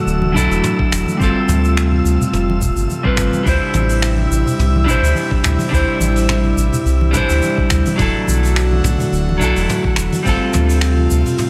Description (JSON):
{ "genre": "sunset chillout", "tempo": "106 BPM", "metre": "4/4", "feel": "swing 54% on 16ths", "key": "unclear", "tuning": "A4 = 440 Hz", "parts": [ { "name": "clean electric guitar", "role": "accompaniment", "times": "0.0-11.5 s", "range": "F#3 to C5", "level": "-21 LUFS", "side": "equal", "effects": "digital delay, shimmer reverb" }, { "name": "airy breathy pad", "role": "sustained chords", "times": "0.0-11.5 s", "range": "C3 to F#4", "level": "-24 LUFS", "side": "equal", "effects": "chorus, shimmer reverb" }, { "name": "wind-like tuned noise texture", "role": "texture", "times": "0.0-11.5 s", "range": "E6", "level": "-32 LUFS", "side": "equal", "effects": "built-in reverb, shimmer reverb" }, { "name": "round analog bass", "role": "bass", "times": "0.1-11.2 s", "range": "D1 to D2", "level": "-19 LUFS", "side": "equal", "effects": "none" }, { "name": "vintage brush drum kit", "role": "drums", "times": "0.1-11.5 s", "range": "finger snaps, hi-hat, shaker, toms", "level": "-26 LUFS", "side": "equal", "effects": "none" }, { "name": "congas", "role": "percussion", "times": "0.2-11.4 s", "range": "none", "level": "-27 LUFS", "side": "equal", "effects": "none" }, { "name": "electronic kick drum", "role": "drums", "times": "0.8-10.4 s", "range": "none", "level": "-22 LUFS", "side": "equal", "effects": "none" } ], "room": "light reverb, studio ambience", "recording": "none", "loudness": "-16 LUFS", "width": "mono", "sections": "0.0-11.5 A section", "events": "none", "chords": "0.0 E9sus4; 1.2 G9sus4; 3.5 D9sus4; 8.0 E9sus4; 10.3 G9sus4" }